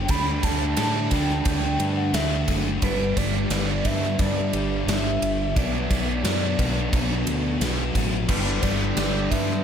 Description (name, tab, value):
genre	rock, shoegaze and dream pop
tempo	88 BPM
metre	4/4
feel	straight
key	G major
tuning	A4 = 440 Hz
part	pure sine lead	melody	0.0-9.6 s	B4 to B5	-30 LUFS	equal	chorus, phaser, tape echo
part	biting overdriven guitar	riff	0.0-9.6 s	G2 to D4	-29 LUFS	right 9 dB	reverse reverb
part	thick fuzz guitar	riff	0.0-9.6 s	G2 to D4	-28 LUFS	left 7 dB	distortion, ensemble chorus
part	growling fingered electric bass	bass	0.0-9.6 s	F#1 to A2	-27 LUFS	equal	overdrive
part	gated 80s drum kit	drums	0.1-9.6 s	crash cymbal, kick drum, ride cymbal, snare drum	-26 LUFS	equal	none
part	fingerpicked twelve-string acoustic guitar	arpeggios	8.3-9.6 s	E3	-34 LUFS	right 3 dB	analog chorus, tape echo
part	overdriven electric guitar	riff	8.3-9.6 s	G2 to G3	-30 LUFS	right 1 dB	none
room	moderate cathedral reverb, RT60 4.5 s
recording	dreamy mix soaked in reverb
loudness	-21 LUFS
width	side -8 dB against mid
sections	0.0-9.6 A section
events	none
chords	0.1 Dsus4; 2.8 G6; 5.6 Bm; 8.3 G6